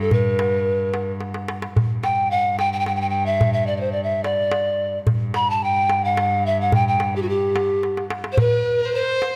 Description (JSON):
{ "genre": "Arabic maqam ensemble", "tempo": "109 BPM", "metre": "3/4", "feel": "straight", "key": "G maqam rast", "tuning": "A4 = 440 Hz", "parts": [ { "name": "mellow hollow polished pan flute", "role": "melody", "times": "0.0-9.4 s", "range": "F#4-49c to B5-47c", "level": "-22 LUFS", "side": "equal", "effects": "none" }, { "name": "rich cello", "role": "drone", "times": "0.0-8.4 s", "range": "G2", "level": "-30 LUFS", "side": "equal", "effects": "none" }, { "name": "darbuka", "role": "percussion", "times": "0.1-9.3 s", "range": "none", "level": "-26 LUFS", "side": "equal", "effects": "none" }, { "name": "warm violin", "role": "second line", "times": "8.4-9.4 s", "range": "Bb4+44c to C5", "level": "-27 LUFS", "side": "equal", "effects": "none" } ], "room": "light reverb", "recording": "none", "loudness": "-21 LUFS", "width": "mono", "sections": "0.0-8.4 A section", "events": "drum fill 1.2-1.8, 7.8-8.4", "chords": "none", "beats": "| 0.10 0.65 1.21 | 1.76 2.31 2.86 | 3.41 3.97 4.52 | 5.07 5.62 6.17 | 6.73 7.28 7.83 | 8.38 8.94" }